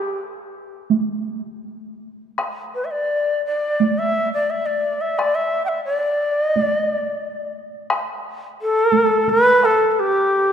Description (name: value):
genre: japanese traditional, Japanese chamber music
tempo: 80-90 BPM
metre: 4/4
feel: rubato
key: unclear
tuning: A4 = 440 Hz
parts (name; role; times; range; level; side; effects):
- breathy reedy shakuhachi; melody; 0.0-10.5 s; G4 to G5; -18 LUFS; equal; none
- taiko ensemble; percussion; 0.9-9.8 s; none; -24 LUFS; right 4 dB; none
room: wet church reverb, RT60 2.8 s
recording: minimal, uncompressed stereo recording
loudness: -17 LUFS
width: side -8 dB against mid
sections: 0.0-10.5 A section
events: none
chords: none